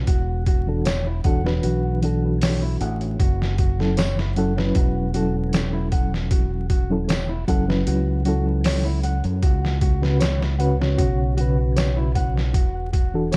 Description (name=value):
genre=trip hop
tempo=77 BPM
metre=4/4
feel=straight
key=F# minor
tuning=A4 = 438 Hz
part: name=mellow reed electric piano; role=accompaniment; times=0.0-13.4 s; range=C#3 to C#5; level=-27 LUFS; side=equal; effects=fast tremolo, tape echo
part: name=fingered electric bass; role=bass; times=0.0-13.4 s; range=E1 to F#2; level=-25 LUFS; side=equal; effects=none
part: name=flamenco guitar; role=arpeggios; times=0.1-13.4 s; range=E4 to F#5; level=-33 LUFS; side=equal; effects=digital delay
part: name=trip hop sampler-style drum kit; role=drums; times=0.1-13.4 s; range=hi-hat, kick drum, snare drum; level=-25 LUFS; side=equal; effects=none
part: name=tambourine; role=percussion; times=0.9-13.4 s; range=none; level=-43 LUFS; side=equal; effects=none
room=digital ambience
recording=dark, warm production, vinyl crackle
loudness=-21 LUFS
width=mono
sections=0.0-13.4 A section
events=none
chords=0.1 E9sus4; 3.2 F#m7; 9.4 C#7sus4; 12.5 E9sus4